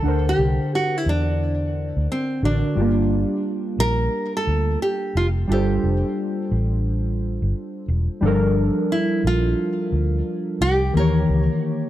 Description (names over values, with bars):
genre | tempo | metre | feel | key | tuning
hip hop | 88 BPM | 4/4 | swing 65% on 16ths | G dorian | A4 = 440 Hz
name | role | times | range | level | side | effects
nylon-string guitar | melody | 0.0-11.9 s | C4 to Bb4 | -24 LUFS | right 1 dB | tape echo
warbly lo-fi synth keys | accompaniment | 0.0-11.9 s | D3 to F#5 | -23 LUFS | equal | chorus
vintage muted fingered electric bass | bass | 0.0-11.5 s | E1 to E2 | -21 LUFS | equal | none
room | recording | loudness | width
light reverb, studio ambience | none | -19 LUFS | side -13 dB against mid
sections
0.0-8.2 A section; 8.2-11.9 A section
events
none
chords
0.0 D7b13; 2.8 Gm9; 10.9 Eb7b9